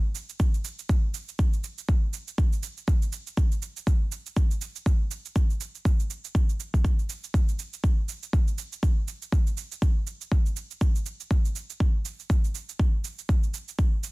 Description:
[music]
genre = house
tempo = 121 BPM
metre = 4/4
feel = swing 57% on 16ths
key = none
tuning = none
[part]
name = cabasa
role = drums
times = 0.1-14.1 s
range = none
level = -39 LUFS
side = right 9 dB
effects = small room reverb
[part]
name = electronic kick drum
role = drums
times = 0.4-13.9 s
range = none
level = -23 LUFS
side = equal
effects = small room reverb
[sound]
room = little or no reverb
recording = dense, heavily limited modern master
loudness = -24 LUFS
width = side -23 dB against mid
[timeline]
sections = 0.0-14.1 A section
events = none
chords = none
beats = 0.40 0.89 1.39 | 1.89 2.38 2.88 3.37 | 3.87 4.37 4.86 5.36 | 5.85 6.35 6.84 7.34 | 7.84 8.33 8.83 9.32 | 9.82 10.32 10.81 11.31 | 11.80 12.30 12.79 13.29 | 13.79

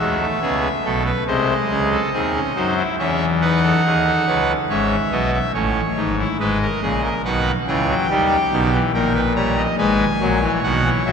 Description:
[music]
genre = classical, baroque-style 4-part fugue for pipe organ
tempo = 70 BPM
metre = 4/4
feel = straight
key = C# minor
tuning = A4 = 440 Hz
[part]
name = pipe organ, trumpet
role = solo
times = 0.0-11.1 s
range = G#1 to A#5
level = -16 LUFS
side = equal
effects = none
[sound]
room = wet cathedral reverb, RT60 5.0 s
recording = none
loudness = -16 LUFS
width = side -6 dB against mid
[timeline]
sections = 0.0-11.1 A section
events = none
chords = 0.0 C#m; 1.3 G#/B#; 3.0 C#m/E; 4.7 C#m/G#; 6.4 G#m; 8.1 D#; 9.8 G#m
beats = 0.41 1.27 2.12 | 2.98 3.84 4.70 5.55 | 6.40 7.25 8.10 8.94 | 9.79 10.63

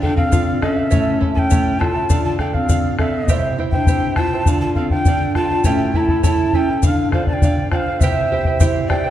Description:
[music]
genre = andean folk, Andean ensemble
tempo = 101 BPM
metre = 2/4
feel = straight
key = D minor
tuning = A4 = 439 Hz
[part]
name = quena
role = melody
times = 0.0-9.1 s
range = E5 to Bb5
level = -23 LUFS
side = right 1 dB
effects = none
[part]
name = breathy bright large pan pipes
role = second line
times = 0.0-9.1 s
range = C4 to D5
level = -22 LUFS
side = left 2 dB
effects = none
[part]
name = charango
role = accompaniment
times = 0.0-9.1 s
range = E4 to A5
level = -26 LUFS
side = right 4 dB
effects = none
[part]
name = nylon-string guitar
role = accompaniment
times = 0.0-9.1 s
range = A2 to A4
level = -24 LUFS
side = right 4 dB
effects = none
[part]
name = bombo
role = percussion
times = 0.0-9.0 s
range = none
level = -18 LUFS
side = left 1 dB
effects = none
[part]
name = egg shaker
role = percussion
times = 0.3-8.7 s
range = none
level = -35 LUFS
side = left 7 dB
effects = none
[sound]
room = wet concert hall reverb, RT60 2.2 s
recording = dark, warm production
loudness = -15 LUFS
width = side -12 dB against mid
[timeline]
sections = 0.0-8.0 A section; 8.0-9.1 A section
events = none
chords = 0.0 Dm; 0.9 A; 2.1 Dm; 3.3 C; 4.5 Dm; 5.7 A; 6.8 Dm; 8.0 C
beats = 0.32 | 0.91 1.50 | 2.10 2.69 | 3.28 3.88 | 4.47 5.06 | 5.65 6.24 | 6.83 7.42 | 8.01 8.60

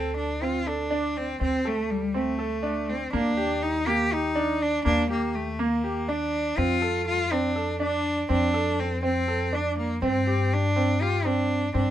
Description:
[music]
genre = contemporary instrumental, contemporary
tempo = 244 BPM (eighths)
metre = 7/8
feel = straight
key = D phrygian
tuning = A4 = 441 Hz
[part]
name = clear cello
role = melody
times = 0.0-11.9 s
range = G3 to G4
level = -26 LUFS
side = left 1 dB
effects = none
[part]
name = bright concert grand piano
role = arpeggios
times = 0.0-11.9 s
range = Bb3 to A4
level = -28 LUFS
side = right 3 dB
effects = none
[part]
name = upright bass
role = bass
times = 0.0-11.9 s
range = D2 to G2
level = -30 LUFS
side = left 2 dB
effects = none
[sound]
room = light reverb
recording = none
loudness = -23 LUFS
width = side -11 dB against mid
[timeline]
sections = 0.0-11.9 A section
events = none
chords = 0.0 D5; 3.1 Ebmaj7; 6.6 F6; 10.0 Gsus4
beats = 0.17 0.42 0.66 0.91 1.16 | 1.40 1.65 1.90 2.14 2.39 2.64 2.88 | 3.13 3.38 3.62 3.87 4.12 4.36 4.61 | 4.85 5.10 5.35 5.59 5.84 6.09 6.33 | 6.58 6.83 7.07 7.32 7.56 7.81 8.05 | 8.30 8.55 8.79 9.04 9.29 9.53 9.78 | 10.02 10.27 10.51 10.76 11.01 11.25 11.50 | 11.74

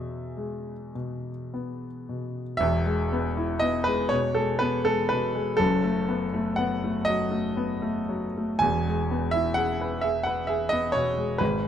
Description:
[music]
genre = classical, romantic nocturne for solo piano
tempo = 35-44 BPM (dotted quarters)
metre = 6/8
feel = rubato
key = E major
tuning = A4 = 442 Hz
[part]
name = warm grand piano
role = solo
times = 0.0-11.7 s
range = E1 to G#5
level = -24 LUFS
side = equal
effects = none
[sound]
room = light reverb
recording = close, detailed microphones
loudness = -24 LUFS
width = side -9 dB against mid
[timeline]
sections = 0.0-2.6 A section; 2.6-11.7 A section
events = none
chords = 0.0 E; 5.6 B7/F#; 8.6 E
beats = 0.96 | 2.63 4.13 | 5.61 7.07 | 8.63 10.04 | 11.41

